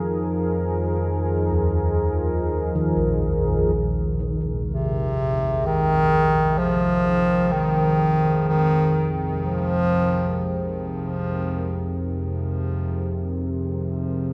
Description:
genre	dark ambient drone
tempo	64 BPM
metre	4/4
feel	straight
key	unclear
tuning	A4 = 442 Hz
part	deep dark ambient pad	sustained chords	0.0-14.3 s	F3 to Bb4	-30 LUFS	equal	chorus, built-in reverb
part	gamelan-type bossed gongs	arpeggios	0.0-8.7 s	Bb1 to Eb4	-31 LUFS	equal	delay
part	analog drone	drone	0.0-14.3 s	F2 to Eb3	-30 LUFS	equal	chorus
part	bronze singing bowl	texture	0.0-14.3 s	Ab3 to Ab4	-40 LUFS	equal	none
part	warm bass clarinet	melody	4.7-10.8 s	C3 to F3	-23 LUFS	equal	delay
room	wet plate reverb, RT60 2.8 s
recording	dreamy mix soaked in reverb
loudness	-22 LUFS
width	mono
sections	0.0-3.8 A section; 3.8-14.3 B section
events	fade-in on synth drone 3.8-14.3; fade-in on ambient pad 3.8-14.3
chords	0.0 Fm7

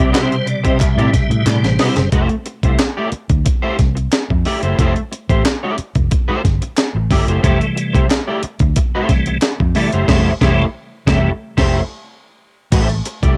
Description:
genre	funk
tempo	91 BPM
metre	4/4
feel	straight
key	unclear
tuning	A4 = 440 Hz
part	electric guitar at the edge of break-up	accompaniment	0.0-13.4 s	A3 to D5	-22 LUFS	equal	ensemble chorus, cassette tape, plate reverb
part	tonewheel organ	stabs	0.0-2.1, 7.4-11.3 s	B2 to E5	-21 LUFS	equal	overdrive, chorus vibrato, slow rotary speaker, cassette tape
part	vintage muted fingered electric bass	bass	0.0-13.4 s	F1 to A2	-20 LUFS	equal	none
part	breakbeat sampler-style drum kit	drums	0.1-13.4 s	crash cymbal, hi-hat, kick drum, snare drum	-19 LUFS	equal	cassette tape
part	group handclap	percussion	0.2-9.6 s	none	-31 LUFS	equal	none
room	light reverb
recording	home recording on cassette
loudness	-16 LUFS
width	mono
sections	0.0-2.1 A section; 2.1-12.7 B section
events	tonewheel organ solo 0.0-2.1; drum fill 1.5-2.1; band accent 10.1-12.7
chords	0.0 Am7; 2.1 Fmaj9; 12.7 Am7

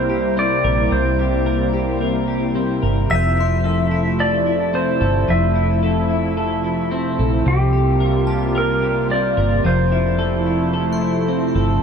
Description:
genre	dream pop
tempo	110 BPM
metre	4/4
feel	straight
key	F major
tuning	A4 = 439 Hz
part	clean lap steel guitar	melody	0.0-11.5 s	G4 to E5	-22 LUFS	equal	shimmer reverb, digital delay
part	lush unison pad	sustained chords	0.0-11.8 s	C3 to F4	-22 LUFS	right 1 dB	chorus, shimmer reverb
part	twelve-string electric guitar	arpeggios	0.0-11.8 s	C3 to Bb4	-22 LUFS	left 2 dB	wide subtle chorus, shimmer reverb, digital delay
part	vintage muted fingered electric bass	bass	0.0-11.8 s	F1 to C2	-22 LUFS	right 1 dB	none
part	glassy synth bell	texture	3.1-4.7, 8.3-11.8 s	A5 to G6	-36 LUFS	left 2 dB	chorus, phaser, shimmer reverb, digital delay
room	moderate huge ambient reverb, RT60 5.0 s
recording	none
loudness	-16 LUFS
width	side -6 dB against mid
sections	0.0-11.8 A section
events	none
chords	0.0 C7(no3); 3.1 Fmaj7; 7.5 C7sus4; 9.6 Fmaj7

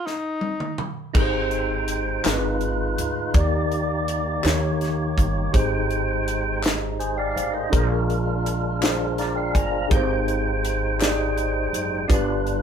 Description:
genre	slow gospel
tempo	55 BPM (dotted quarters)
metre	6/8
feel	straight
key	unclear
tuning	A4 = 440 Hz
part	breathy tenor saxophone	melody	0.0-0.9 s	Eb4	-27 LUFS	left 2 dB	none
part	crisp fusion drum kit	drums	0.1-12.6 s	crash cymbal, hi-hat, kick drum, snare drum, toms	-23 LUFS	equal	none
part	mellow tine electric piano	accompaniment	1.1-12.6 s	G2 to Bb5	-25 LUFS	left 1 dB	fast stereo tremolo
part	percussive tonewheel organ	sustained chords	1.1-12.6 s	G3 to Bb5	-27 LUFS	right 3 dB	slow rotary speaker, overdrive
part	upright bass	bass	1.1-12.6 s	Gb1 to Eb2	-27 LUFS	equal	none
part	group handclap	percussion	2.2-11.3 s	none	-32 LUFS	left 3 dB	none
room	moderate studio reverb, RT60 0.6 s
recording	band playing live in one room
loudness	-20 LUFS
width	side -8 dB against mid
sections	0.0-1.2 A section; 1.2-12.6 B section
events	stop 0.0-1.2; drum fill 0.1-1.2; tonewheel organ fill 8.8-9.9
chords	0.0 N.C.; 1.2 Abmaj7; 2.2 Abm6; 3.3 Ebmaj7; 4.4 Eb7; 5.5 Abmaj7; 7.7 Bb7; 9.9 Abmaj7; 12.1 G7

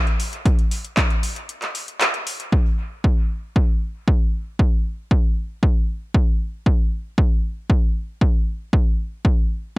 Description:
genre	techno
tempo	116 BPM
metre	4/4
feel	straight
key	none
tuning	none
part	deep house drum kit	drums	0.1-2.5 s	handclaps, hi-hat	-23 LUFS	equal	overdrive, dub echo
part	electronic kick drum	drums	0.5-9.4 s	none	-17 LUFS	equal	overdrive
room	little or no reverb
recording	bright 1980s-style digital production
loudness	-18 LUFS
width	side -20 dB against mid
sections	0.0-2.5 A section; 2.5-9.8 B section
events	break 1.5-2.5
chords	none

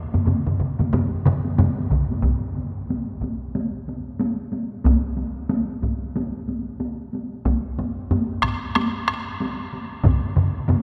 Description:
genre	japanese traditional, taiko drum ensemble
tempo	92 BPM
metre	4/4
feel	swing 60% on 16ths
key	none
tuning	none
part	taiko ensemble	percussion	0.1-10.8 s	none	-29 LUFS	equal	none
part	taiko ensemble	percussion	0.1-2.1, 7.8-10.8 s	none	-26 LUFS	equal	none
part	taiko ensemble	percussion	0.1-2.1, 10.0-10.8 s	none	-28 LUFS	equal	none
part	taiko ensemble	percussion	1.9-10.2 s	none	-28 LUFS	equal	none
room	wet cathedral reverb, RT60 6.0 s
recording	recorded in a church or concert hall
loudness	-24 LUFS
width	mono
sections	0.0-2.2 A section; 2.2-10.8 B section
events	none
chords	none

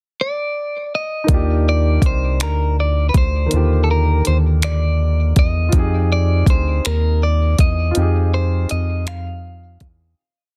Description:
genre	slow six-eight R&B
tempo	54 BPM (dotted quarters)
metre	6/8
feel	straight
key	Eb major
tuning	A4 = 440 Hz
part	clean electric guitar	melody	0.2-9.9 s	A4 to F5	-26 LUFS	equal	none
part	warm concert grand piano	accompaniment	1.2-10.2 s	D3 to Ab4	-27 LUFS	equal	none
part	round analog bass	bass	1.3-10.1 s	C2 to F2	-19 LUFS	equal	none
part	smooth R&B drum kit	drums	1.3-10.0 s	finger snaps, hi-hat, kick drum	-18 LUFS	equal	soft clipping on snare
room	little or no reverb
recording	dense, heavily limited modern master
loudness	-17 LUFS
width	mono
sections	0.0-1.3 pickup bar; 1.3-10.2 verse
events	fade-out 8.0-10.2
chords	0.0 N.C.; 1.3 Ebmaj9; 5.7 Fm9

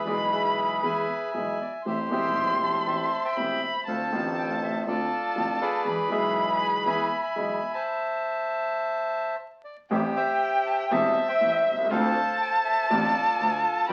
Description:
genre	tango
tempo	120 BPM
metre	4/4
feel	rubato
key	A minor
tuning	A4 = 441 Hz
part	bandoneon	melody	0.0-13.9 s	F4 to B5	-31 LUFS	equal	none
part	warm violin	second line	0.0-13.9 s	E5 to C6	-29 LUFS	equal	none
part	clear concert grand piano	accompaniment	0.0-13.9 s	E1 to G#4	-33 LUFS	equal	none
part	clear double bass	bass	0.0-13.9 s	E1 to E2	-38 LUFS	equal	none
room	wet studio reverb, RT60 0.7 s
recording	very old 78 rpm record, vinyl crackle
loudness	-26 LUFS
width	mono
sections	0.0-9.9 A section; 9.9-13.9 A section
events	stop 7.9-9.9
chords	0.0 E; 1.9 Am7; 3.9 Dm7; 5.9 E; 7.9 Am; 9.9 Am7; 11.9 Dm7

